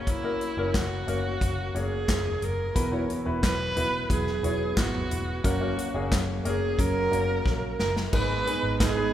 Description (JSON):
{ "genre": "piano-driven pop", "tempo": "89 BPM", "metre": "4/4", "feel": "straight", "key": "unclear", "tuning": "A4 = 442 Hz", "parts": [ { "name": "rich viola", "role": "melody", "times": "0.0-9.1 s", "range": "C#4 to B4", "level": "-30 LUFS", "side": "right 2 dB", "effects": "none" }, { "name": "clear grand piano", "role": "accompaniment", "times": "0.0-9.1 s", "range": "G#2 to C#5", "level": "-32 LUFS", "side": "left 2 dB", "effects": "none" }, { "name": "vintage muted picked electric bass", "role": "bass", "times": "0.0-9.1 s", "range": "E1 to A#1", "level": "-32 LUFS", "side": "equal", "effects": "none" }, { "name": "natural country drum kit", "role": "drums", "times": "0.1-9.0 s", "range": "crash cymbal, handclaps, hi-hat, kick drum, snare drum, toms", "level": "-28 LUFS", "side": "equal", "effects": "none" }, { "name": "fingerpicked plugged-in steel-string acoustic guitar", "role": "riff", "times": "2.8-9.1 s", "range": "G#2 to B4", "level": "-33 LUFS", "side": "right 4 dB", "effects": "none" } ], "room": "moderate church reverb, RT60 2.6 s", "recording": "recorded in a church or concert hall", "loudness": "-24 LUFS", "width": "side -11 dB against mid", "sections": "0.0-8.1 A section; 8.1-9.1 B section", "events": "drum fill 7.5-8.1", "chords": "0.0 F#; 2.8 Esus2; 5.4 F#; 8.1 G#m" }